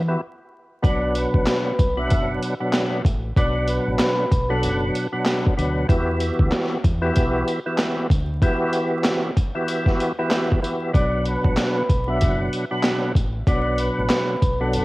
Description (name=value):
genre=hip hop, boom-bap hip-hop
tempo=95 BPM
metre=4/4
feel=swing 59% on 16ths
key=B minor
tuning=A4 = 442 Hz
part: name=percussive tonewheel organ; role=accompaniment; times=0.0-14.8 s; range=B2 to F#5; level=-23 LUFS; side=equal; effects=overdrive, chorus vibrato, slow rotary speaker, high-pass filter, low-pass filter
part: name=deep dub fingered electric bass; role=bass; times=0.0-14.8 s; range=F#1 to E3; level=-25 LUFS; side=equal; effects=none
part: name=vibraphone with medium mallets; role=melody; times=0.8-4.8, 10.9-14.8 s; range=A4 to E6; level=-26 LUFS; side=equal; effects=high-pass filter, low-pass filter, cassette tape, tape echo
part: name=boom bap sampler-style drum kit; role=drums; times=0.8-14.8 s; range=handclaps, hi-hat, kick drum, snare drum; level=-21 LUFS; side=equal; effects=cassette tape
room=digital ambience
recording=home recording on cassette, vinyl crackle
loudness=-19 LUFS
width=side -20 dB against mid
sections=0.8-14.8 A section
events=break 0.2-0.8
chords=0.0 Emadd9; 0.8 Bm; 5.9 Emadd9; 10.9 Bm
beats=0.21 | 0.84 1.47 2.10 2.74 | 3.37 4.00 4.63 5.26 | 5.89 6.53 7.16 7.79 | 8.42 9.05 9.68 10.32 | 10.95 11.58 12.21 12.84 | 13.47 14.11 14.74